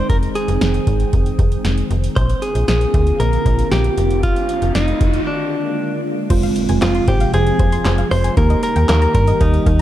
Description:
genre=synth-pop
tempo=116 BPM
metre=4/4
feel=straight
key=unclear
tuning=A4 = 438 Hz
part: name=direct-recorded clean electric guitar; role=melody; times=0.0-9.8 s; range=D4 to C5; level=-21 LUFS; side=equal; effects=spring reverb, tape echo
part: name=soft string machine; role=sustained chords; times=0.0-9.8 s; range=C3 to G5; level=-24 LUFS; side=equal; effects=ensemble chorus
part: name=slap-like FM bass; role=bass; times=0.1-9.8 s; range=F1 to G2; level=-17 LUFS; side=equal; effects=none
part: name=electro analog drum machine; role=drums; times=0.1-9.8 s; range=crash cymbal, handclaps, hi-hat, kick drum, snare drum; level=-19 LUFS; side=equal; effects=none
part: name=riser and impact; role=sound effects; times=3.4-8.4 s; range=none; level=-29 LUFS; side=left 1 dB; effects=none
part: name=muted felt-like synth keys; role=accompaniment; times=6.3-9.8 s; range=Ab3 to G4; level=-22 LUFS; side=right 4 dB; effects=chorus
part: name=soft round pluck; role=arpeggios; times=6.3-9.8 s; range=Bb4 to C6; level=-27 LUFS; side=left 3 dB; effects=chorus, tape echo
room=light reverb, digital ambience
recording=dark, warm production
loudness=-14 LUFS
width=side -13 dB against mid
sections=0.0-6.3 A section; 6.3-9.8 B section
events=riser 3.4-6.3; break 5.3-6.3; impact 6.3-8.4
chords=0.0 Fm7; 2.2 Bbadd9; 4.0 F7; 5.3 Bb7; 6.3 Fm; 8.4 Eb

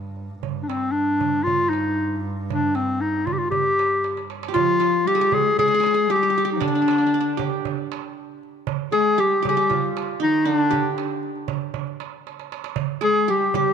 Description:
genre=Arabic maqam ensemble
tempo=117 BPM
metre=4/4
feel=straight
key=G maqam hijaz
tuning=A4 = 440 Hz
part: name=clear double bass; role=drone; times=0.0-4.6 s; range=G2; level=-32 LUFS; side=right 2 dB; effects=none
part: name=darbuka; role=percussion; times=0.2-13.7 s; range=none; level=-30 LUFS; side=right 14 dB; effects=none
part: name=clear clarinet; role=melody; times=0.6-13.7 s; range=C4 to Ab4+27c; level=-20 LUFS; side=left 2 dB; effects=none
part: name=dark cello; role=second line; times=4.5-13.7 s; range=D3 to Ab3+28c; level=-28 LUFS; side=left 13 dB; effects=none
part: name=qanun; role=second line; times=4.5-13.7 s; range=D4 to Ab4+25c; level=-27 LUFS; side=right 13 dB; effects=slapback echo
room=moderate echo chamber reverb, RT60 2.4 s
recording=1960s-style stereo with parts hard left and right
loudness=-19 LUFS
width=side -7 dB against mid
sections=0.0-4.5 A section; 4.5-13.7 B section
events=drum fill 4.0-4.5, 12.3-12.8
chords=none

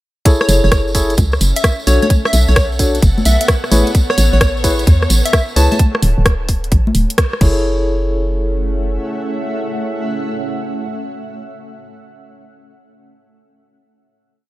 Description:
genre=UK garage, two-step garage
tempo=130 BPM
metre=4/4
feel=swing 67% on 16ths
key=F# minor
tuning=A4 = 439 Hz
part: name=tine electric piano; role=stabs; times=0.3-10.9 s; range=D4 to C#5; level=-20 LUFS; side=left 1 dB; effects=medium tremolo, dub echo
part: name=electronic kick drum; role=drums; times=0.3-7.5 s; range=none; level=-13 LUFS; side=equal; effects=none
part: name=garage drum kit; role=drums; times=0.3-7.5 s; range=congas, crash cymbal, hi-hat, rim click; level=-18 LUFS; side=equal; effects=none
part: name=tambourine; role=percussion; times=0.3-5.8 s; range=none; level=-24 LUFS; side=right 3 dB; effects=none
part: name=granular cloud pad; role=texture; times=1.4-11.3 s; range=A3 to G#5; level=-26 LUFS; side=right 1 dB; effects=built-in reverb, sidechain pumping
part: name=plucky unison lead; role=melody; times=0.4-5.8 s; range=C#5 to A5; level=-22 LUFS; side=equal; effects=dub echo
part: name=hollow knocking FM bass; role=bass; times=0.5-9.0 s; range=D1 to E2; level=-14 LUFS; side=equal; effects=sidechain pumping
part: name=dark symphonic violin section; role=sustained chords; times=3.9-5.8 s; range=C#5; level=-29 LUFS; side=left 2 dB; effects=sidechain pumping
room=little or no reverb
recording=none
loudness=-12 LUFS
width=side -17 dB against mid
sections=0.3-7.6 drop; 7.6-11.3 final chord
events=drop 0.3-7.6; band accent 7.2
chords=0.3 F#m7; 1.9 Bm7; 3.7 Amaj9; 5.8 D5; 7.4 F#m7

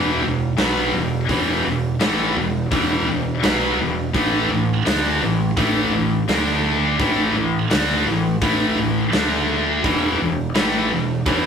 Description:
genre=heavy metal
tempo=84 BPM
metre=4/4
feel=straight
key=unclear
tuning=A4 = 441 Hz
part: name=high-gain distorted guitar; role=riff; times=0.0-11.5 s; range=E2 to D4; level=-23 LUFS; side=right 6 dB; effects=distortion
part: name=scooped high-gain guitar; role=riff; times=0.0-11.5 s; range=E2 to D4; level=-20 LUFS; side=left 3 dB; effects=distortion
part: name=growling picked electric bass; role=bass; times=0.0-11.5 s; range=E1 to D2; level=-28 LUFS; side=equal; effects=overdrive
part: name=big rock drum kit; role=drums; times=0.6-11.4 s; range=hi-hat, kick drum, snare drum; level=-23 LUFS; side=equal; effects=none
room=moderate studio reverb, RT60 0.6 s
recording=rough rehearsal-room recording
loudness=-17 LUFS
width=side -7 dB against mid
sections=0.0-11.5 A section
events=none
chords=0.0 E5; 4.1 A5; 6.3 D5; 7.0 A5; 9.1 D5; 9.8 E5

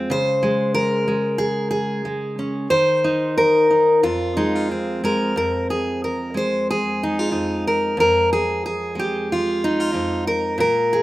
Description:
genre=folk, solo fingerstyle acoustic guitar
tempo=92 BPM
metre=4/4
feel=straight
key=F minor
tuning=A4 = 440 Hz
part: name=fingerpicked steel-string acoustic guitar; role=solo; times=0.0-11.0 s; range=F2 to C5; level=-18 LUFS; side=equal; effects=none
room=little or no reverb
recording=recorded outdoors, with no room sound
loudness=-18 LUFS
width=side -17 dB against mid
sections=0.0-5.4 A section; 5.4-11.0 B section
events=none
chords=0.1 Db5; 2.7 N.C.; 4.0 Fm; 5.4 Fm7

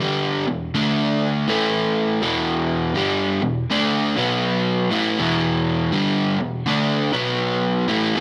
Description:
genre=rock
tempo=81 BPM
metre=4/4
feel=swing 63% on 8ths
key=E minor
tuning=A4 = 438 Hz
part: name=overdriven semi-hollow guitar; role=solo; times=0.0-8.2 s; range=E2 to D4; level=-21 LUFS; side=equal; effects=none
room=moderate large studio reverb, RT60 1.4 s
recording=none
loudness=-21 LUFS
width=mono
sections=0.0-8.2 A section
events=none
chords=0.0 Em; 0.7 D5; 1.5 A5; 2.2 Em; 4.1 B5; 4.8 Em; 7.1 B5

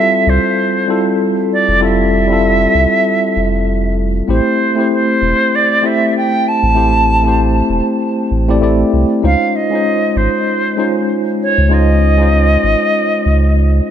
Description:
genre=sunset chillout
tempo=97 BPM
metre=4/4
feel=swing 57% on 16ths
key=unclear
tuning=A4 = 440 Hz
part: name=silver concert flute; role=melody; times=0.0-13.9 s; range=C5 to A5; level=-15 LUFS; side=equal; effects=tape echo
part: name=tine electric piano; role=accompaniment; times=0.0-13.9 s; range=G3 to D5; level=-15 LUFS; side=equal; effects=auto-pan, low-pass filter, tape echo
part: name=warm sub bass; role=bass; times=0.3-13.8 s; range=E1 to Db2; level=-14 LUFS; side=equal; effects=none
room=moderate concert hall reverb, RT60 1.9 s, studio reverb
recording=dark, warm production, nothing above 10.5 kHz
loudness=-11 LUFS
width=side -9 dB against mid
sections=0.0-13.9 A section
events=filter sweep on tine electric piano 0.0-13.9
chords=0.0 Fmaj9; 4.3 Am7; 9.2 Dbmaj9

